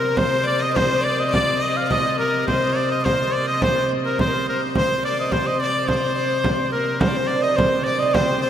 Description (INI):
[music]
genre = medieval dance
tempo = 105 BPM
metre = 2/4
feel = straight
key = C minor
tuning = A4 = 440 Hz
[part]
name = bright shawm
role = melody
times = 0.0-8.5 s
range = Bb4 to F5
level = -22 LUFS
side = right 1 dB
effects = none
[part]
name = rich fiddle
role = second line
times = 0.0-8.5 s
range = Bb4 to Eb5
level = -23 LUFS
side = left 2 dB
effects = none
[part]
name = pipe organ, flutes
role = drone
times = 0.0-8.5 s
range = C3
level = -27 LUFS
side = left 1 dB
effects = none
[part]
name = frame drum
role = percussion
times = 0.2-8.5 s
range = none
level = -25 LUFS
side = right 2 dB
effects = none
[part]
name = oud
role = second line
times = 6.7-8.5 s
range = Bb3 to Eb4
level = -24 LUFS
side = right 5 dB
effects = none
[sound]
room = wet huge ambient reverb, RT60 7.8 s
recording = in a vast, echoing space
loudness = -18 LUFS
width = side -10 dB against mid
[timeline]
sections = 0.0-7.0 A section; 7.0-8.5 A section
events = none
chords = none